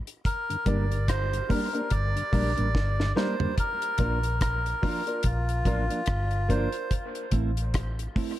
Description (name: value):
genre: dub reggae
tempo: 72 BPM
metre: 4/4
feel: swing 58% on 16ths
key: G minor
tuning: A4 = 441 Hz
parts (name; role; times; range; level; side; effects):
- mellow tonewheel organ; accompaniment; 0.1-3.5 s; G2 to D4; -36 LUFS; left 3 dB; chorus vibrato, slow rotary speaker, high-pass filter
- deep reggae drum kit; drums; 0.1-8.4 s; hi-hat, kick drum, rim click, snare drum, toms; -29 LUFS; equal; none
- melodica; melody; 0.3-6.9 s; F4 to D5; -31 LUFS; equal; dub echo
- mellow electric guitar; accompaniment; 0.7-8.3 s; F3 to E4; -33 LUFS; right 4 dB; dub echo
- warm upright piano; stabs; 0.7-6.7 s; Bb3 to Bb4; -36 LUFS; left 2 dB; high-pass filter, dub echo
- vintage muted fingered electric bass; bass; 0.7-8.1 s; G1 to Bb1; -28 LUFS; equal; none
room: light reverb, small room ambience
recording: none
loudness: -24 LUFS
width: side -14 dB against mid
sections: 0.0-8.4 A section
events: break 0.0; drum fill 2.7-3.6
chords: 0.2 Gm; 3.6 Bb; 6.9 Am